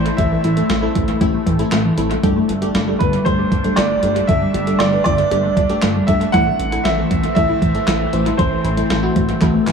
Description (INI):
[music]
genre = synth-pop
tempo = 117 BPM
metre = 4/4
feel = straight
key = unclear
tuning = A4 = 438 Hz
[part]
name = warm baby grand piano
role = melody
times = 0.0-9.4 s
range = B4 to F#5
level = -20 LUFS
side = right 2 dB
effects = analog delay
[part]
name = FM electric piano with soft pad layer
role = accompaniment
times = 0.0-9.7 s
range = A3 to C5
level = -23 LUFS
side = left 1 dB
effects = chorus, analog delay
[part]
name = lush unison pad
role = sustained chords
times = 0.0-9.7 s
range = E3 to E4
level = -23 LUFS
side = equal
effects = chorus, phaser
[part]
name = analog pluck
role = arpeggios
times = 0.0-9.7 s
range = E3 to G4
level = -24 LUFS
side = left 3 dB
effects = chorus, analog delay
[part]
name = chorused synth bass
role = bass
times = 0.0-9.7 s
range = G1 to A1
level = -21 LUFS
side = right 1 dB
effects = none
[part]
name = clean 12-bit digital drum machine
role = drums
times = 0.1-9.7 s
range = handclaps, hi-hat, kick drum, snare drum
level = -21 LUFS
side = right 1 dB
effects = analog delay
[sound]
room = moderate spring reverb, RT60 1.8 s, digital ambience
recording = echo-heavy mix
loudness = -14 LUFS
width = side -6 dB against mid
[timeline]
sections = 0.0-9.7 A section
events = drum fill 9.4-9.7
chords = 0.0 Am; 2.2 Gsus2; 6.3 Am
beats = | 0.18 0.70 1.21 1.72 | 2.23 2.75 3.26 3.77 | 4.29 4.80 5.31 5.83 | 6.34 6.85 7.36 7.88 | 8.39 8.90 9.41